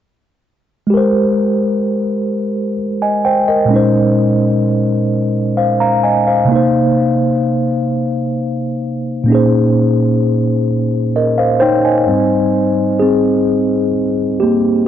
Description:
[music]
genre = R&B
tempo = 43 BPM (dotted quarters)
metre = 6/8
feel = straight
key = unclear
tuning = A4 = 439 Hz
[part]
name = mellow tine electric piano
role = solo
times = 0.9-14.9 s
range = Ab2 to Bb5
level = -12 LUFS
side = equal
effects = medium stereo tremolo
[sound]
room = moderate echo chamber reverb, RT60 2.2 s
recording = dark, warm production, nothing above 7.8 kHz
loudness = -12 LUFS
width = side -10 dB against mid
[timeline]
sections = 0.9-12.1 A section; 12.1-14.9 B section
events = tine electric piano solo 12.1-14.9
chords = 0.9 Abmaj9; 3.7 Bbm11; 6.5 Cm7; 9.3 Bbm11; 12.1 Abmaj9

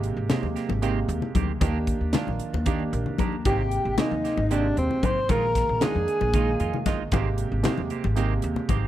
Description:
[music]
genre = electric jazz fusion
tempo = 229 BPM (eighths)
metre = 7/8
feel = straight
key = Ab lydian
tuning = A4 = 440 Hz
[part]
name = clear grand piano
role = accompaniment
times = 0.0-8.9 s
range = C3 to Bb5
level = -31 LUFS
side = right 5 dB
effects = none
[part]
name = upright bass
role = bass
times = 0.0-8.9 s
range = G1 to F2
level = -27 LUFS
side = equal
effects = none
[part]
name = crisp fusion drum kit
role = drums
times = 0.0-8.8 s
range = hi-hat, kick drum, snare drum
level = -28 LUFS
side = equal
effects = none
[part]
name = semi-hollow electric guitar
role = stabs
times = 0.3-8.9 s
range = Eb3 to G4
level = -34 LUFS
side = right 11 dB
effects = wide subtle chorus
[part]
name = congas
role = percussion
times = 0.3-8.8 s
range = none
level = -30 LUFS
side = left 7 dB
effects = none
[part]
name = mellow alto saxophone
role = melody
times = 3.5-6.9 s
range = C4 to C5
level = -26 LUFS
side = equal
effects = slapback echo
[part]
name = breathy mellow jazz flute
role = second line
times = 3.5-6.9 s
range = C5 to C6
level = -32 LUFS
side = left 4 dB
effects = none
[sound]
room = studio reverb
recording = dry, close 1970s-style studio recording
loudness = -22 LUFS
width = side -13 dB against mid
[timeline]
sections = 0.0-8.9 A section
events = grand piano fill 2.7-3.5, 6.3-7.1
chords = 0.0 Abmaj9; 1.6 Ebmaj7; 3.5 Abmaj9; 5.3 Bb7sus4; 7.1 Abmaj9

